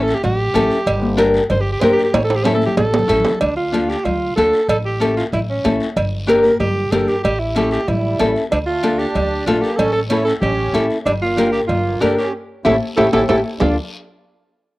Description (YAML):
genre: latin, cumbia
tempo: 188 BPM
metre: 4/4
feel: straight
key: D harmonic minor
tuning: A4 = 440 Hz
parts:
  - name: breathy alto saxophone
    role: melody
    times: 0.0-13.8 s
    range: C#4 to C#5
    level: -20 LUFS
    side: right 1 dB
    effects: cassette tape
  - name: nylon-string guitar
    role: accompaniment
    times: 0.0-13.8 s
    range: C#4 to Bb4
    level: -18 LUFS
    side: left 1 dB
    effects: cassette tape
  - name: upright bass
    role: bass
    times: 0.0-13.8 s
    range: G1 to D2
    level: -23 LUFS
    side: equal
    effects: none
  - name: guiro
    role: percussion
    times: 0.1-13.7 s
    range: none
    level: -36 LUFS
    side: left 3 dB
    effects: none
  - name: congas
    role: percussion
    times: 0.2-13.7 s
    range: none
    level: -24 LUFS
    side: left 3 dB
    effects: none
  - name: cowbell and timbales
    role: percussion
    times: 0.2-13.7 s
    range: none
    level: -22 LUFS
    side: right 2 dB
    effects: none
  - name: accordion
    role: second line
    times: 7.9-13.8 s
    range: F3 to F4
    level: -26 LUFS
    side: right 2 dB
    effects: light tremolo tuning, cassette tape
room: moderate spring reverb, RT60 1.3 s, small room ambience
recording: home recording on cassette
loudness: -15 LUFS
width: side -18 dB against mid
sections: 0.0-3.4 A section; 3.4-13.6 B section; 13.6-14.8 C section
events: alto saxophone solo 0.0-3.4; drum fill 2.1-3.4, 12.3-13.6; band accent 12.3-13.6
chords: 0.0 A7; 0.9 Gm; 2.1 A; 3.4 Dm; 4.7 A; 6.0 Gm; 7.2 A7; 8.5 Dm; 9.8 A7; 11.1 Gm; 12.3 A7; 13.6 Dm